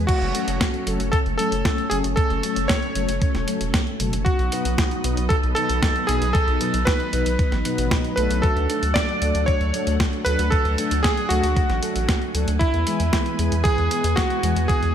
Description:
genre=italo disco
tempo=115 BPM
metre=4/4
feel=straight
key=F# minor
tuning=A4 = 440 Hz
part: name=string machine, full ensemble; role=sustained chords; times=0.0-14.9 s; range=E3 to G#5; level=-28 LUFS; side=equal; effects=ensemble chorus
part: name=round analog bass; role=bass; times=0.0-14.9 s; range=E1 to E2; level=-24 LUFS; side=equal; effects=none
part: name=bright electric grand piano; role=melody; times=0.1-14.9 s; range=E4 to D5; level=-24 LUFS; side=right 1 dB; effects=ping-pong delay
part: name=clean 12-bit digital drum machine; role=drums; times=0.1-14.9 s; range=crash cymbal, hi-hat, snare drum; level=-28 LUFS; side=equal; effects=studio reverb
part: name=electronic kick drum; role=drums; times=0.1-14.8 s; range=none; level=-22 LUFS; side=equal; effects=studio reverb
part: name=mellow synth brass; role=stabs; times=0.3-14.6 s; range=B2 to B4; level=-29 LUFS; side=left 3 dB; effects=chorus
room=moderate plate reverb, RT60 1.6 s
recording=bright 1980s-style digital production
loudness=-19 LUFS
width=side -9 dB against mid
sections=0.0-14.9 A section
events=none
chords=0.1 F#m; 4.3 B; 8.4 D; 12.6 E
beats=| 0.09 0.61 1.13 1.65 | 2.17 2.69 3.22 3.74 | 4.26 4.78 5.30 5.83 | 6.35 6.87 7.39 7.91 | 8.43 8.96 9.48 10.00 | 10.52 11.04 11.56 12.09 | 12.61 13.13 13.65 14.17 | 14.70

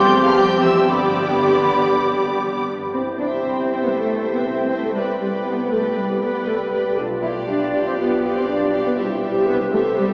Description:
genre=quick classical-period movement for symphony orchestra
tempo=119 BPM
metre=4/4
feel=straight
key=C major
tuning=A4 = 440 Hz
part: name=rich studio violin section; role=melody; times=0.0-10.1 s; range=E5 to G6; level=-33 LUFS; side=equal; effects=none
part: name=mellow hollow flute section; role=second line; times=0.0-10.1 s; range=G4 to C6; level=-26 LUFS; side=equal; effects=none
part: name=rich chamber violin section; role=second line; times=0.0-10.1 s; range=C5 to G5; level=-32 LUFS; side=equal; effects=none
part: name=rich chamber viola section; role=accompaniment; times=0.0-10.1 s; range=B3 to C5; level=-26 LUFS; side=equal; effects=none
part: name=clear French horn section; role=sustained chords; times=0.0-10.1 s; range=B3 to B4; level=-25 LUFS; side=equal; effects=none
part: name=rich chamber double bass section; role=bass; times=0.0-10.1 s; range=B1 to G2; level=-34 LUFS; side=equal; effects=none
part: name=warm chamber cello section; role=bass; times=0.0-10.1 s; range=D3 to E4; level=-27 LUFS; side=equal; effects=none
room=wet cathedral reverb, RT60 5.6 s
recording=heard from further back in the room, small speaker sound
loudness=-20 LUFS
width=mono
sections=0.0-2.9 A section; 2.9-10.1 B section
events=none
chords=0.0 C/E; 0.9 G; 2.9 C; 5.0 G/C; 7.0 G7/B; 9.0 C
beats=0.36 | 0.88 1.40 1.92 2.43 | 2.95 3.45 3.96 4.46 | 4.96 5.46 5.97 6.48 | 6.98 7.48 7.98 8.47 | 8.97 9.47 9.96

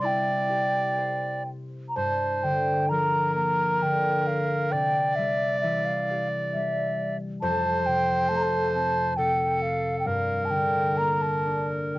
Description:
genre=celtic folk, Celtic slow air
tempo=67 BPM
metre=3/4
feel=uneven beats, rubato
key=G dorian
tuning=A4 = 440 Hz
part: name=mellow wooden flute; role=melody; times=0.0-12.0 s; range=E5 to Bb5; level=-26 LUFS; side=equal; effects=cassette tape
part: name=bright reedy tenor recorder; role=second line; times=0.0-12.0 s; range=A4 to D5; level=-28 LUFS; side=right 1 dB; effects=cassette tape
part: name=concert harp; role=accompaniment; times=0.0-12.0 s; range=F2 to C5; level=-30 LUFS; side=left 2 dB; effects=cassette tape
room=light reverb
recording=home recording on cassette, nothing above 7.6 kHz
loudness=-23 LUFS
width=side -18 dB against mid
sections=0.0-2.0 A section; 2.0-12.0 B section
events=none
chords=0.0 Cadd9; 2.0 Gm7; 4.7 C; 7.4 F; 10.1 Gm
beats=0.02 0.98 | 1.95 2.89 3.82 | 4.72 5.62 6.54 | 7.42 8.29 9.17 | 10.05 10.97 11.95

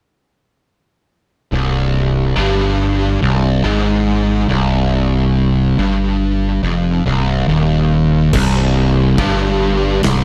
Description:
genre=stoner and doom metal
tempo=70 BPM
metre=4/4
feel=straight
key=C minor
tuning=A4 = 436 Hz
part: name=fuzz guitar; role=riff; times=1.5-10.2 s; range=C2 to Ab2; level=-17 LUFS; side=equal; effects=distortion
part: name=growling fingered electric bass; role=bass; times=1.5-10.2 s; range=C1 to Ab1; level=-21 LUFS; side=equal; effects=overdrive, tube saturation
part: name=big rock drum kit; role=drums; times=8.3-10.2 s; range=crash cymbal, kick drum, snare drum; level=-24 LUFS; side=equal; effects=none
room=small room ambience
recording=dark, warm production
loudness=-15 LUFS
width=mono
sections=1.5-8.3 A section; 8.3-10.2 B section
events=none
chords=1.5 Cm; 8.3 C5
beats=| 1.53 2.38 3.23 4.08 | 4.93 5.79 6.64 7.49 | 8.34 9.19 10.04

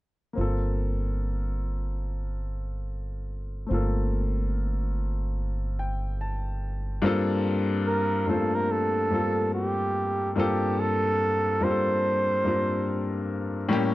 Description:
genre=R&B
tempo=72 BPM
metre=4/4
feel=swing 62% on 16ths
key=G minor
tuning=A4 = 441 Hz
part: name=warm grand piano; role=accompaniment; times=0.3-13.9 s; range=G2 to A5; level=-27 LUFS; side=left 2 dB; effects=none
part: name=upright bass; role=bass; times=0.4-7.0 s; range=G1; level=-28 LUFS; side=equal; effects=none
part: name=breathy flugelhorn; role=melody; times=7.9-13.3 s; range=G4 to C5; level=-26 LUFS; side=right 2 dB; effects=none
room=little or no reverb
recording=dry, close 1970s-style studio recording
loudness=-24 LUFS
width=side -16 dB against mid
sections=0.4-7.0 A section; 7.0-13.9 B section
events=grand piano fill 5.4-7.0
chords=0.4 Gm9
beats=| 0.36 1.19 2.03 2.86 | 3.69 4.53 5.36 6.19 | 7.03 7.86 8.69 9.53 | 10.36 11.19 12.03 12.86 | 13.69

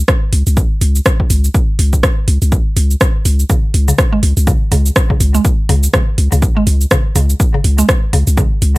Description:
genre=minimal techno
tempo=123 BPM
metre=4/4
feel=swing 58% on 16ths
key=unclear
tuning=A4 = 440 Hz
part: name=punchy sub bass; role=bass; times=0.0-8.8 s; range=C#2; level=-12 LUFS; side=equal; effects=sidechain pumping
part: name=electronic kick drum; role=drums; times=0.1-8.5 s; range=none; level=-14 LUFS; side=equal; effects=none
part: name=garage drum kit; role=drums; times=0.1-8.7 s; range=cabasa, hi-hat, rim click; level=-18 LUFS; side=right 1 dB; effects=overdrive
part: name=mallet-like synth pluck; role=riff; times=3.5-8.4 s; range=C#3 to G#3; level=-19 LUFS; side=right 1 dB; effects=chorus, cassette tape, sidechain pumping, dub echo
room=little or no reverb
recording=none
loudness=-10 LUFS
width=side -21 dB against mid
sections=0.0-8.8 A section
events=none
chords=0.0 C#5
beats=0.08 0.57 1.06 | 1.55 2.03 2.52 3.01 | 3.50 3.98 4.47 4.96 | 5.45 5.94 6.42 6.91 | 7.40 7.89 8.38

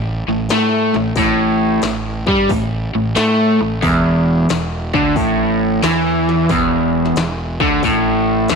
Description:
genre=blues rock power trio and southern rock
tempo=90 BPM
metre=4/4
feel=swing 66% on 8ths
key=unclear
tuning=A4 = 440 Hz
part: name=overdriven electric guitar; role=riff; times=0.0-8.6 s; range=E2 to A3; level=-14 LUFS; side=equal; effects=none
part: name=fuzz fingered electric bass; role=bass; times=0.0-8.6 s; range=E1 to A2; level=-23 LUFS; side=right 1 dB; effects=overdrive
part: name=industrial drum kit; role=drums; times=0.5-8.6 s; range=hi-hat, kick drum, snare drum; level=-23 LUFS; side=left 4 dB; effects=distortion
room=light reverb, digital ambience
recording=1960s-style stereo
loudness=-13 LUFS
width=side -5 dB against mid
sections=0.0-8.6 A section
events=none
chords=0.0 N.C.; 3.8 E7sus4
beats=0.50 | 1.17 1.83 2.50 3.17 | 3.83 4.50 5.17 5.83 | 6.50 7.17 7.83 8.50

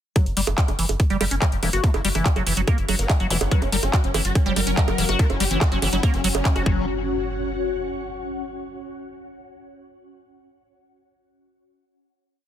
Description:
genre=psychedelic trance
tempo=143 BPM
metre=4/4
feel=straight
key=F# major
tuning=A4 = 441 Hz
part: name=liquid acid bass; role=riff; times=0.2-6.9 s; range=E3 to F#4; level=-26 LUFS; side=moving between left 7 dB and right 5 dB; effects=chorus, auto-pan, sidechain pumping, ping-pong delay
part: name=electronic kick drum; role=drums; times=0.2-6.7 s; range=none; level=-19 LUFS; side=equal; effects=overdrive
part: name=techno drum kit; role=drums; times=0.2-6.6 s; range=bongos, handclaps, hi-hat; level=-26 LUFS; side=right 2 dB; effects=none
part: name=ethereal airy pad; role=texture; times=2.1-8.5 s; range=C#4 to F#5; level=-31 LUFS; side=left 2 dB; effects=ensemble chorus, built-in reverb, phaser, sidechain pumping
part: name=round analog bass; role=bass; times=0.3-6.9 s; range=E1 to F#1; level=-25 LUFS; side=equal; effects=none
part: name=formant-sweep wobble bass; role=second line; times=1.6-6.9 s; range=F#3 to E4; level=-38 LUFS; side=left 3 dB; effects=chorus, sidechain pumping, high-pass filter, dub echo
part: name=zap and impact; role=sound effects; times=3.3-3.4, 6.8-8.3 s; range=none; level=-33 LUFS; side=equal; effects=none
part: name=swarming rave lead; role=melody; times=3.5-6.8 s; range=C#4 to B4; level=-30 LUFS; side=equal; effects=chorus, phaser, sidechain pumping, ping-pong delay
part: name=overtone-sweeping drone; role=sustained chords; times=4.1-6.7 s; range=F#3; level=-33 LUFS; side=left 3 dB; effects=chorus, built-in reverb, phaser, sidechain pumping
room=light reverb, digital ambience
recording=dense, heavily limited modern master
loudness=-19 LUFS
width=side -10 dB against mid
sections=0.2-6.9 groove; 6.9-8.6 final chord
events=fade-in on ambient pad 0.2-6.9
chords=0.2 F#5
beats=| 0.16 0.58 1.00 1.42 | 1.84 2.26 2.68 3.10 | 3.52 3.93 4.35 4.77 | 5.19 5.61 6.03 6.45 | 6.87 7.29 7.71 8.13

